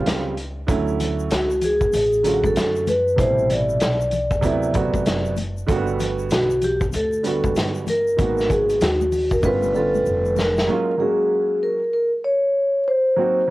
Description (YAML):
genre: hip hop, jazz-hop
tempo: 96 BPM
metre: 4/4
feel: swing 62% on 16ths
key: unclear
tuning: A4 = 440 Hz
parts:
  - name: vibraphone with soft mallets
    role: melody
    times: 0.0-13.5 s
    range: F#4 to D5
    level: -20 LUFS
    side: equal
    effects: plate reverb
  - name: dark upright piano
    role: accompaniment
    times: 0.0-13.5 s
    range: B2 to F#4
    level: -24 LUFS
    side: right 4 dB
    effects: cassette tape, plate reverb
  - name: upright bass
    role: bass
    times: 0.0-10.7 s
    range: F1 to F#2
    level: -28 LUFS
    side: equal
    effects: none
  - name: vintage drum kit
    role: drums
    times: 0.1-10.7 s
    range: hi-hat, kick drum, snare drum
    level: -24 LUFS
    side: equal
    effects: cassette tape
  - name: egg shaker and congas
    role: percussion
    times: 0.7-10.7 s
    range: none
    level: -34 LUFS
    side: left 5 dB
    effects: none
room: moderate booth ambience, RT60 0.2 s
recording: home recording on cassette, vinyl crackle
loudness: -18 LUFS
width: side -18 dB against mid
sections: 0.0-10.7 A section; 10.7-13.5 B section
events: drum fill 9.4-10.7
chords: 0.0 A7alt; 0.7 Dmaj9; 3.2 Am9; 4.4 D13; 5.7 Gmaj9; 8.2 G#m9; 9.4 G7#11; 10.7 F#